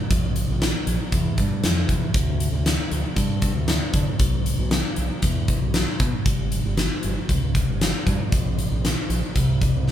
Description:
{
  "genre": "quiet-loud alternative rock",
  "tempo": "117 BPM",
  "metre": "4/4",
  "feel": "straight",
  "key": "unclear",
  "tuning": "A4 = 440 Hz",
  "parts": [
    { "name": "growling fingered electric bass", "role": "bass", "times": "0.1-9.9 s", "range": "G1 to D3", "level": "-24 LUFS", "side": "equal", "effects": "overdrive" },
    { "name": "huge arena drum kit", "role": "drums", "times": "0.1-9.9 s", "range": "hi-hat, kick drum, snare drum", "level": "-22 LUFS", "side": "equal", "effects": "none" }
  ],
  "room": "light reverb",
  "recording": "band playing live in one room",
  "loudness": "-20 LUFS",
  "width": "side -10 dB against mid",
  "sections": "0.0-9.9 A section",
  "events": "none",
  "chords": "none"
}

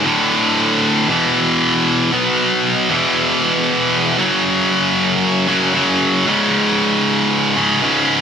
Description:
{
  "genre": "metal",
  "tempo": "116 BPM",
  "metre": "4/4",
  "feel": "straight",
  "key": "unclear",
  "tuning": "A4 = 442 Hz",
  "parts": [
    { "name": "heavy high-gain guitar", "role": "solo", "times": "0.0-8.2 s", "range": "C#2 to B3", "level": "-13 LUFS", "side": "equal", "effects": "distortion" }
  ],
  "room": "light reverb, digital ambience",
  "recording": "none",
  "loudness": "-13 LUFS",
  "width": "side -7 dB against mid",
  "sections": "0.0-8.2 A section",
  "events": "none",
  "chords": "0.0 D5; 1.1 E5; 2.1 B5; 2.9 E5; 4.2 F#5; 6.3 C#5"
}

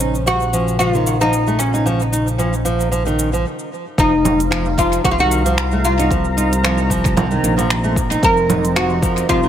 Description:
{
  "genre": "organic downtempo",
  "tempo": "113 BPM",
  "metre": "4/4",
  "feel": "swing 56% on 16ths",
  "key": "unclear",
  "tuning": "A4 = 436 Hz",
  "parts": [
    { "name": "oud", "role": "melody", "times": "0.0-9.5 s", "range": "Db4 to Bb4", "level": "-19 LUFS", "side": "left 1 dB", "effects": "tape echo" },
    { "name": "warm analog pad", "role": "sustained chords", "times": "0.0-9.5 s", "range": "C3 to Bb5", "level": "-25 LUFS", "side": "right 1 dB", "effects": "chorus, sidechain pumping" },
    { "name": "nylon-string guitar", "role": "arpeggios", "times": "0.0-9.5 s", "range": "Eb3 to Eb4", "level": "-21 LUFS", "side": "right 1 dB", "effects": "tape echo" },
    { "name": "smooth synth bass", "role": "bass", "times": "0.0-9.5 s", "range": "F1 to C2", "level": "-20 LUFS", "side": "equal", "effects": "sidechain pumping" },
    { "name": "organic electronic drum kit", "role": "drums", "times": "0.0-9.4 s", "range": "congas, finger snaps, hi-hat, shaker", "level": "-23 LUFS", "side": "right 2 dB", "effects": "overdrive, tape echo" },
    { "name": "electronic kick drum", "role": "drums", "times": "4.0-9.4 s", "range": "none", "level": "-20 LUFS", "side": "equal", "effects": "overdrive" }
  ],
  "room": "light reverb",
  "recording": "echo-heavy mix",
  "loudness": "-14 LUFS",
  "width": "side -10 dB against mid",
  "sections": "0.0-4.0 A section; 4.0-9.5 B section",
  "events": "stop 3.5-4.0",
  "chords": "0.0 Bbmadd9; 4.0 Fsus4"
}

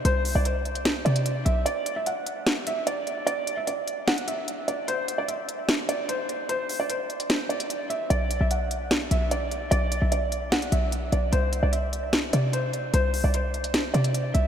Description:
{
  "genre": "hip hop, trap",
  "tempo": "149 BPM",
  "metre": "4/4",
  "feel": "half-time",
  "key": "unclear",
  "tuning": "A4 = 436 Hz",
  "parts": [
    { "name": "felt-muted upright piano", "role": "melody", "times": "0.0-14.5 s", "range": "C5 to F#5", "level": "-28 LUFS", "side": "right 1 dB", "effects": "analog delay" },
    { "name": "short 808-style bass", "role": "bass", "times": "0.0-1.7, 8.1-14.5 s", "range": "B1 to C3", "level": "-25 LUFS", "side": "equal", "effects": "none" },
    { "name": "trap drum kit", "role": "drums", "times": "0.1-14.4 s", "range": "hi-hat, snare drum", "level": "-29 LUFS", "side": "equal", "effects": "none" }
  ],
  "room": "moderate cathedral reverb, RT60 6.2 s",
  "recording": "dreamy mix soaked in reverb",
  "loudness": "-23 LUFS",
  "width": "side -9 dB against mid",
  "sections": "0.0-14.5 A section",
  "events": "break 1.7-8.1",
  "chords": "0.0 Csus2; 1.7 N.C.; 8.1 Bm; 11.3 Csus2"
}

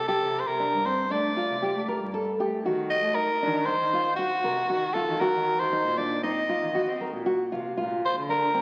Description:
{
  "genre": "contemporary instrumental, chamber music in an uneven meter",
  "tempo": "117 BPM",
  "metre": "5/4",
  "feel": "straight",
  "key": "unclear",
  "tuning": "A4 = 440 Hz",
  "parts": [
    { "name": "raspy soprano saxophone", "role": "melody", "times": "0.0-8.6 s", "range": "Gb4 to Eb5", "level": "-28 LUFS", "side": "equal", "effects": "none" },
    { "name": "warm cello", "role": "bass", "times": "0.0-8.6 s", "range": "G2 to C4", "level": "-37 LUFS", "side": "equal", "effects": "none" },
    { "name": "nylon-string guitar", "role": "arpeggios", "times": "0.1-8.6 s", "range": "C4 to Bb4", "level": "-31 LUFS", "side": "equal", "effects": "none" }
  ],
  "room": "wet scoring stage reverb, RT60 1.8 s",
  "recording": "very old 78 rpm record, vinyl crackle",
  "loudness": "-26 LUFS",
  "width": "mono",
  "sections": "0.0-8.6 A section",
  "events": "none",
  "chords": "0.0 Csus2; 2.6 Ebm; 7.8 Bb"
}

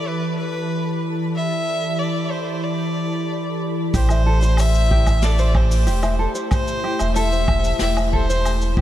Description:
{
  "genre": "folktronica",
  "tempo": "93 BPM",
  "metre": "4/4",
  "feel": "straight",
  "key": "A minor",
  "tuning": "A4 = 440 Hz",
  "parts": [
    { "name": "rich violin", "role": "melody", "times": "0.0-8.7 s", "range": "B4 to E5", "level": "-25 LUFS", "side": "left 1 dB", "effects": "diffuse ambient delay" },
    { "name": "warbly tape-like pad", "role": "sustained chords", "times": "0.0-8.8 s", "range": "E3 to D5", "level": "-25 LUFS", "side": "left 1 dB", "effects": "chorus, built-in reverb" },
    { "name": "twinkling granular texture", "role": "texture", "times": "0.0-4.0 s", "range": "A4 to B5", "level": "-36 LUFS", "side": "equal", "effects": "built-in reverb, analog chorus" },
    { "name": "tenor ukulele", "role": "arpeggios", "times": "3.9-8.8 s", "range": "G4 to E5", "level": "-27 LUFS", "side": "equal", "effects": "diffuse ambient delay" },
    { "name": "warm sub bass", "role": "bass", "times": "3.9-8.8 s", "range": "E1 to A1", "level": "-18 LUFS", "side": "equal", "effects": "tube saturation" },
    { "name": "kick drum", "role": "drums", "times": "3.9-8.8 s", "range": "none", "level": "-21 LUFS", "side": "equal", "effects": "none" },
    { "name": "vintage brush drum kit", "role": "drums", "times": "3.9-8.7 s", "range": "hi-hat, shaker, snare drum, woodblock", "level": "-29 LUFS", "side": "left 1 dB", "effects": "none" }
  ],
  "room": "light reverb, small room ambience",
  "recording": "none",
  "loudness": "-18 LUFS",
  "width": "side -12 dB against mid",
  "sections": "0.0-3.9 A section; 3.9-8.8 B section",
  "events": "filter sweep on ambient pad 0.0-3.9",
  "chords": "0.0 Em7; 3.9 Am7"
}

